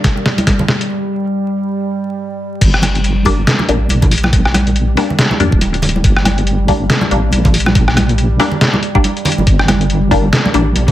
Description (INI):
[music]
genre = deep dubstep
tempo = 140 BPM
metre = 4/4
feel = swing 58% on 16ths, half-time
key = G minor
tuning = A4 = 440 Hz
[part]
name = deep dark ambient pad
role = sustained chords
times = 0.0-10.9 s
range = G3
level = -21 LUFS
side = right 2 dB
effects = chorus, built-in reverb
[part]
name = electronic kick drum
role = drums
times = 0.0-10.9 s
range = none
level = -13 LUFS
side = equal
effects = none
[part]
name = trip hop sampler-style drum kit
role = drums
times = 0.0-10.9 s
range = crash cymbal, hi-hat, rim click, snare drum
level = -16 LUFS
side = equal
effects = none
[part]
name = congas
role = percussion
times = 0.2-10.9 s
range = none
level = -20 LUFS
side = right 1 dB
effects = dub echo
[part]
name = deep soft wobble bass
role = bass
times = 2.6-10.9 s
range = D1 to E2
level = -14 LUFS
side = equal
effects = chorus
[part]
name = filtered dub chord stab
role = stabs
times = 3.3-10.9 s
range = G3 to D4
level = -19 LUFS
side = left 3 dB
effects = phaser, lush chorus, vintage 12-bit sampler grit, dub echo
[sound]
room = light reverb, digital ambience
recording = vinyl crackle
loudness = -11 LUFS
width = side -13 dB against mid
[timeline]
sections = 0.0-2.6 A section; 2.6-10.9 B section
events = build-up 0.0-2.6; drum fill 0.0-0.9; break 0.9-2.6; drop 2.6-10.9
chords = 0.0 N.C.; 2.6 Gm